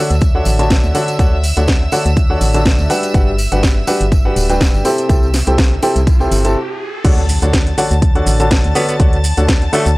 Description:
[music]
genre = piano house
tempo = 123 BPM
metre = 4/4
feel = swing 54% on 16ths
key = D major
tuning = A4 = 442 Hz
[part]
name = rich studio violin section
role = sustained chords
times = 0.0-10.0 s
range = E5 to A6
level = -27 LUFS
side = equal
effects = sidechain pumping
[part]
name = clear upright piano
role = riff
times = 0.0-9.9 s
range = C3 to A5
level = -17 LUFS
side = equal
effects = sidechain pumping
[part]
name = organ-like FM bass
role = bass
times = 0.1-10.0 s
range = D1 to D2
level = -16 LUFS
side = equal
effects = sidechain pumping
[part]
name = house drum kit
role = drums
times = 0.1-10.0 s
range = crash cymbal, hi-hat, shaker, snare drum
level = -20 LUFS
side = equal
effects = none
[part]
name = tambourine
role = percussion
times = 0.1-6.5 s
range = none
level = -29 LUFS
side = right 1 dB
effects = none
[part]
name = electronic kick drum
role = drums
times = 0.2-9.6 s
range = none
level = -13 LUFS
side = equal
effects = none
[part]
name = riser and impact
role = sound effects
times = 5.1-9.0 s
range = none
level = -29 LUFS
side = equal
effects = none
[part]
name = raspy tenor saxophone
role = melody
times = 8.8-9.9 s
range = A3 to B3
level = -20 LUFS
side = equal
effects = none
[sound]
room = small room ambience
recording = dry, gritty hardware recording, transformer saturation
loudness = -11 LUFS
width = side -21 dB against mid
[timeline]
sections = 0.0-7.0 A section; 7.0-10.0 B section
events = riser 5.1-7.0; stop 6.6-7.0; drop 7.0-10.0; impact 7.0-9.0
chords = 0.0 Dmaj7; 2.9 Gmaj7; 4.8 C6; 7.0 Dmaj7

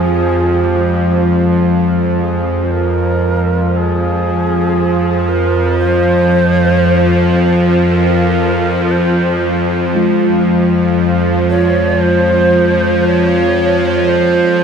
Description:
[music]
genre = dark ambient drone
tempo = 58 BPM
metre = 4/4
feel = straight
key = F minor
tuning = A4 = 441 Hz
[part]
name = bright reedy long shakuhachi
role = melody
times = 0.0-14.6 s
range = G4 to Db5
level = -18 LUFS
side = equal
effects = ping-pong delay
[part]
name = bowed-like drone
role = drone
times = 0.0-14.6 s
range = F2 to F3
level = -12 LUFS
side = equal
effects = built-in reverb
[part]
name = quartz singing bowl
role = texture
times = 0.0-14.6 s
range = Ab3 to F4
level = -22 LUFS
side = left 2 dB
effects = none
[sound]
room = wet plate reverb, RT60 2.8 s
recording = dreamy mix soaked in reverb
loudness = -11 LUFS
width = side -6 dB against mid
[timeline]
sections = 0.0-14.6 A section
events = fade-in on shakuhachi 0.0-14.6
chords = 0.0 Fm

